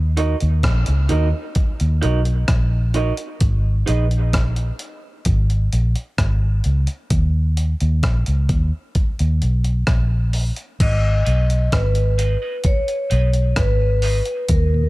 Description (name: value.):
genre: dub reggae.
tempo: 65 BPM.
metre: 4/4.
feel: straight.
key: G# minor.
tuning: A4 = 439 Hz.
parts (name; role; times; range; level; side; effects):
vintage muted fingered electric bass; bass; 0.0-14.9 s; G#1 to D#2; -17 LUFS; equal; none.
electric guitar through a small old amp; accompaniment; 0.2-4.0, 11.2-14.2 s; D#4 to D#5; -27 LUFS; right 4 dB; high-pass filter, dub echo.
breakbeat sampler-style drum kit; drums; 0.2-14.7 s; crash cymbal, hi-hat, kick drum, rim click; -21 LUFS; equal; none.
vibraphone with medium hard mallets; melody; 10.8-14.9 s; A#4 to D#5; -23 LUFS; left 1 dB; dub echo.
mellow tonewheel organ; accompaniment; 11.0-14.8 s; D#2 to D#4; -35 LUFS; left 3 dB; none.
room: digital ambience.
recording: dark, warm production.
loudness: -16 LUFS.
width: side -20 dB against mid.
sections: 0.0-10.8 A section; 10.8-14.9 B section.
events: break 0.0-10.8.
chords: 0.0 D#m; 3.4 N.C.; 7.1 D#5; 10.8 G#m.